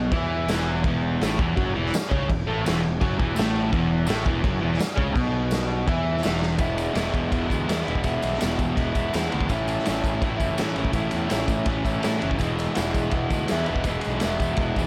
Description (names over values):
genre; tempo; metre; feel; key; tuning
garage rock duo or trio; 166 BPM; 4/4; straight; E major; A4 = 440 Hz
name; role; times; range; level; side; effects
raw garage guitar; riff; 0.0-14.9 s; E2 to E4; -27 LUFS; equal; overdrive
fuzz picked electric bass; bass; 0.0-14.9 s; E1 to A2; -31 LUFS; equal; overdrive
raw garage drum kit; drums; 0.1-14.8 s; crash cymbal, kick drum, ride cymbal, snare drum; -29 LUFS; equal; none
tambourine; percussion; 0.5-14.9 s; none; -45 LUFS; equal; none
room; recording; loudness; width
light reverb; none; -24 LUFS; mono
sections
0.0-6.6 A section; 6.6-14.9 B section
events
drum fill 6.4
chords
0.0 E5; 6.6 E; 9.5 A; 12.4 E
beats
0.12 0.48 | 0.84 1.21 1.57 1.93 | 2.29 2.65 3.01 3.37 | 3.73 4.09 4.45 4.80 | 5.16 5.52 5.88 6.24 | 6.60 6.96 7.32 7.68 | 8.04 8.41 8.77 9.13 | 9.49 9.85 10.22 10.58 | 10.94 11.30 11.67 12.03 | 12.39 12.76 13.12 13.48 | 13.85 14.21 14.58